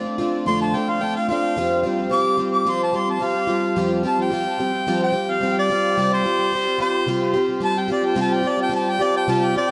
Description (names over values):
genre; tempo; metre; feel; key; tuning
rock; 109 BPM; 4/4; straight; F major; A4 = 437 Hz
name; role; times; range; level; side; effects
picked plugged-in twelve-string acoustic guitar; accompaniment; 0.0-9.7 s; F2 to G4; -23 LUFS; equal; tape echo
mellow harmonica; melody; 0.5-9.7 s; C5 to D6; -24 LUFS; equal; tape echo
room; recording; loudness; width
wet spring reverb, RT60 2.8 s; echo-heavy mix, nothing above 10.8 kHz; -21 LUFS; mono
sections
0.0-9.7 A section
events
harmonica solo 0.0-9.7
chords
0.0 Dm7/F; 1.6 Fsus2; 6.0 Csus4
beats
0.46 1.01 | 1.56 2.11 2.66 3.21 | 3.76 4.31 4.86 5.41 | 5.96 6.51 7.07 7.62 | 8.17 8.72 9.27